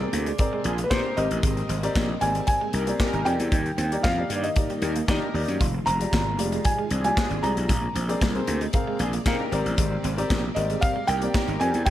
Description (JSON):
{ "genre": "early-eighties boogie funk", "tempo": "115 BPM", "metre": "4/4", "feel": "straight", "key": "unclear", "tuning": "A4 = 440 Hz", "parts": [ { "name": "felt-muted upright piano", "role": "melody", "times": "0.0-11.9 s", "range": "B4 to Bb5", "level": "-28 LUFS", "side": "equal", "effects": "none" }, { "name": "dark baby grand piano", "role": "accompaniment", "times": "0.0-11.9 s", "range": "G3 to F5", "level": "-30 LUFS", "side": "left 2 dB", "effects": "none" }, { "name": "string machine, violins", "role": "sustained chords", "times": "0.0-11.9 s", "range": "C3 to D5", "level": "-36 LUFS", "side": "equal", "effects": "none" }, { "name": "gritty slap bass", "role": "bass", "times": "0.0-11.9 s", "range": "F1 to Eb3", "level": "-27 LUFS", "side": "equal", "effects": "overdrive" }, { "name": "electric guitar at the edge of break-up", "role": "riff", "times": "0.1-11.9 s", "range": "G3 to F4", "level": "-36 LUFS", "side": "right 6 dB", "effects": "wide subtle chorus" }, { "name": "modern studio drum kit", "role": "drums", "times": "0.1-11.9 s", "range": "handclaps, hi-hat, kick drum, snare drum", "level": "-26 LUFS", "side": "equal", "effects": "gated reverb" }, { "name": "analog synth brass", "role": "second line", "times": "0.7-11.7 s", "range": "C4 to Bb4", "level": "-33 LUFS", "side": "left 1 dB", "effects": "chorus, phaser" } ], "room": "light reverb, small room ambience", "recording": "none", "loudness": "-22 LUFS", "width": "side -13 dB against mid", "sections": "0.0-11.9 A section", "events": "none", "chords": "0.0 Bb9; 1.2 Abmaj9#11; 3.5 Ebmaj7; 5.6 Fm69; 7.7 Bb9; 9.5 Abmaj9#11", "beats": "0.39 0.91 | 1.43 1.96 2.48 3.00 | 3.52 4.04 4.56 5.08 | 5.61 6.13 6.65 7.17 | 7.69 8.22 8.74 9.26 | 9.78 10.30 10.82 11.35 | 11.87" }